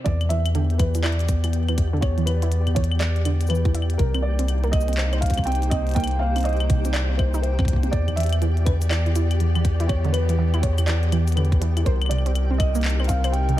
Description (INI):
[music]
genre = IDM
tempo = 122 BPM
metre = 4/4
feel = swing 62% on 16ths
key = unclear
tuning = A4 = 440 Hz
[part]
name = felt-muted upright piano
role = melody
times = 0.0-13.6 s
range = Bb4 to G5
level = -30 LUFS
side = right 2 dB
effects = tape echo
[part]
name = hollow soft pad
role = sustained chords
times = 0.0-13.6 s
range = C3 to D5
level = -33 LUFS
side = left 2 dB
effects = chorus
[part]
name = warbly dusty pluck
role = arpeggios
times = 0.1-13.6 s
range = E2 to C5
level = -29 LUFS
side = right 3 dB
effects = chorus, cassette tape, ping-pong delay
[part]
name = round analog bass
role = bass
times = 0.1-13.6 s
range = C2 to E2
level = -21 LUFS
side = equal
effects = none
[part]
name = electronic kick drum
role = drums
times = 0.1-13.2 s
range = none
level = -22 LUFS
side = equal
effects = studio reverb
[part]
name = glitchy drum kit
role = drums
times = 0.1-13.6 s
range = cabasa, claves, handclaps, hi-hat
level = -32 LUFS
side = left 3 dB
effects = low-pass filter on perc, studio reverb, low-pass filter on snare, low-pass filter on hats, ping-pong delay
[part]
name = flickering grainy texture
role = texture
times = 0.2-13.6 s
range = G4 to G5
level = -37 LUFS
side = left 2 dB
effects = built-in reverb
[sound]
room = little or no reverb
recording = none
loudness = -19 LUFS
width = side -14 dB against mid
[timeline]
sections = 0.1-13.6 A section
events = none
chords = 0.1 Em7; 4.0 Cm7; 7.9 Em7; 11.9 Cm7